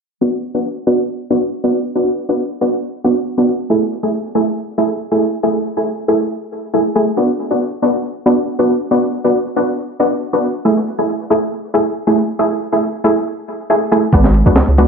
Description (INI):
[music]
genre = breakbeat, breaks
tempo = 138 BPM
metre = 4/4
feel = swing 54% on 16ths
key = unclear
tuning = A4 = 440 Hz
[part]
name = orchestra-hit-like synth stab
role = stabs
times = 0.2-14.9 s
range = A3 to G#4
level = -14 LUFS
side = equal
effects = built-in reverb, dub echo
[part]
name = picked electric bass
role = riff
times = 14.1-14.8 s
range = G#3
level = -17 LUFS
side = equal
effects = tube saturation
[part]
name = saturated sub bass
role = bass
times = 14.1-14.9 s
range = G#1 to C#2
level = -13 LUFS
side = equal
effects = none
[part]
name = breakbeat sampler-style drum kit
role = drums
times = 14.1-14.9 s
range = kick drum, ride cymbal, snare drum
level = -12 LUFS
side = equal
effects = studio ambience
[sound]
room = moderate small room reverb, RT60 0.5 s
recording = low-pass filter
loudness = -14 LUFS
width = side -5 dB against mid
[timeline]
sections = 0.2-14.9 A section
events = filter sweep on synth stab 0.2-14.9; filter sweep 0.2-14.9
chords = 0.2 Bm; 3.7 Eadd11/A; 7.2 Bm; 10.6 Eadd11/A; 14.1 G#m7b5